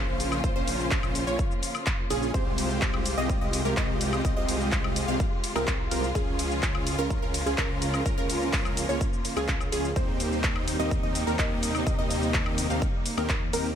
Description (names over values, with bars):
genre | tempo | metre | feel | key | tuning
EDM, festival progressive house | 126 BPM | 4/4 | straight | unclear | A4 = 440 Hz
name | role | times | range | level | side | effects
warm studio string section | sustained chords | 0.0-13.8 s | C3 to G4 | -34 LUFS | left 1 dB | sidechain pumping
wide unison pluck | arpeggios | 0.0-13.7 s | Ab4 to F5 | -35 LUFS | right 1 dB | sidechain pumping, tape echo
dense compressed supersaw | riff | 0.0-13.7 s | Ab3 to F5 | -31 LUFS | right 1 dB | sidechain pumping, tape echo
wide detuned saw bass | bass | 0.0-13.7 s | Bb1 to Eb2 | -32 LUFS | equal | chorus, tube saturation, sidechain pumping
big-room dance drum kit | drums | 0.2-13.8 s | handclaps, hi-hat, ride cymbal, shaker, woodblock | -32 LUFS | left 1 dB | none
electronic kick drum | drums | 0.4-13.4 s | none | -29 LUFS | equal | none
room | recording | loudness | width
digital ambience | none | -24 LUFS | side -9 dB against mid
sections
0.0-13.8 A section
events
none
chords
0.0 Bbm; 2.3 Fmadd9/C; 6.2 Db; 10.0 Eb6